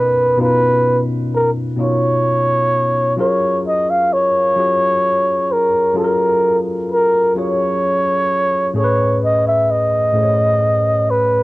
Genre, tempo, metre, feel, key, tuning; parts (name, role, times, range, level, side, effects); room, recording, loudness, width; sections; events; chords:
R&B; 43 BPM (dotted quarters); 6/8; straight; A4 = 439 Hz
breathy flugelhorn; melody; 0.0-11.4 s; A#4 to E#5; -15 LUFS; equal
tine electric piano; accompaniment; 0.0-11.4 s; A2 to C#5; -19 LUFS; left 1 dB; overdrive, wide subtle chorus, cassette tape
wet booth ambience, RT60 0.2 s; home recording on cassette; -13 LUFS; side -19 dB against mid
0.0-11.4 A section
0.0 Bmaj9; 3.2 F#maj9; 8.7 Amaj9